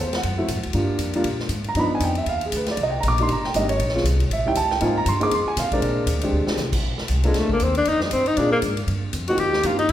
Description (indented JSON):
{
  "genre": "jazz, small-group swing and bop",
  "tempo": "236 BPM",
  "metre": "4/4",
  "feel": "swing 59% on 8ths",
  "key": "Bb major from 6.8 s",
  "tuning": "A4 = 440 Hz",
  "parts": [
    { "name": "dark grand piano", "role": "accompaniment", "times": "0.0-9.8 s", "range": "F3 to D6", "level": "-23 LUFS", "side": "right 1 dB", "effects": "none" },
    { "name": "upright bass", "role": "bass", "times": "0.0-9.9 s", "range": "G1 to C3", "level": "-24 LUFS", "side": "equal", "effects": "none" },
    { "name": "swinging big-band drum kit", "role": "drums", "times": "0.1-9.9 s", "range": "crash cymbal, hi-hat, kick drum, ride cymbal, snare drum", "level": "-29 LUFS", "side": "left 1 dB", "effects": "none" },
    { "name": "breathy tenor saxophone", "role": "melody", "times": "7.3-9.9 s", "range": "G3 to G4", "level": "-20 LUFS", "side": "left 2 dB", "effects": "none" }
  ],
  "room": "wet recital hall reverb, RT60 1.3 s",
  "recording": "recorded in a church or concert hall",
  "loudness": "-19 LUFS",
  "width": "side -12 dB against mid",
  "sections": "0.0-6.8 A section; 6.8-9.9 A section",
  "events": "drum fill 6.3; tenor saxophone solo 6.8-9.9",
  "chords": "0.0 D7 (rootless); 0.7 Gm7; 1.8 G7b13; 2.8 Cm7; 3.8 Bbm9; 4.3 A7#11; 4.8 Ab6; 5.8 Bb13; 6.8 Bbmaj7; 7.9 Fsus2; 8.4 Bb9; 8.9 Eb6",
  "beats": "0.23 0.49 | 0.74 0.99 1.25 1.50 | 1.76 2.01 2.27 2.52 | 2.77 3.03 3.28 3.54 | 3.79 4.05 4.30 4.56 | 4.81 5.06 5.32 5.57 | 5.83 6.08 6.33 6.59 | 6.84 7.10 7.35 7.61 | 7.86 8.11 8.37 8.62 | 8.87 9.13 9.38 9.63 | 9.89"
}